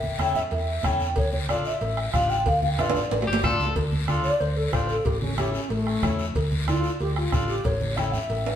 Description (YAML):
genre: latin, cumbia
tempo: 185 BPM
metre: 4/4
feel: straight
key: D harmonic minor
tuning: A4 = 440 Hz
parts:
  - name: hollow wooden-headed alto flute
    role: melody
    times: 0.0-8.6 s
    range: A3 to G5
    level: -27 LUFS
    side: left 1 dB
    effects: none
  - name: hollow-body short-scale fingered electric bass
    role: bass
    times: 0.0-8.6 s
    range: G1 to E2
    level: -28 LUFS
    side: equal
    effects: none
  - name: congas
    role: percussion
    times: 0.0-8.3 s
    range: none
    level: -32 LUFS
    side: right 2 dB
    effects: none
  - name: accordion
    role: accompaniment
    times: 0.2-8.2 s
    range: C#4 to A4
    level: -32 LUFS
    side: left 1 dB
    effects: none
  - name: bombo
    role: percussion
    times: 0.2-8.1 s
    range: none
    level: -30 LUFS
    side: equal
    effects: none
  - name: guiro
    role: percussion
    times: 0.2-8.6 s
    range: none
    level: -37 LUFS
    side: left 3 dB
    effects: none
  - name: cowbell and timbales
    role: percussion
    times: 0.5-8.5 s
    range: none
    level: -31 LUFS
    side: right 3 dB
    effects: none
  - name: electric guitar at the edge of break-up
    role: second line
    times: 3.3-3.7 s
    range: G4 to A4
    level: -28 LUFS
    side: left 3 dB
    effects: none
room: wet stone room reverb, RT60 1.2 s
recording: band playing live in one room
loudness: -22 LUFS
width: side -9 dB against mid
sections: 0.0-3.8 A section; 3.8-8.6 B section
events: drum fill 2.8-3.8; alto flute solo 3.8-8.6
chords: 0.0 A; 1.2 Dm; 5.1 A; 6.4 Dm; 7.7 A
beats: 0.19 0.52 0.84 | 1.17 1.49 1.81 2.14 | 2.46 2.79 3.11 3.43 | 3.76 4.08 4.41 4.73 | 5.06 5.38 5.71 6.03 | 6.35 6.68 7.00 7.33 | 7.65 7.98 8.30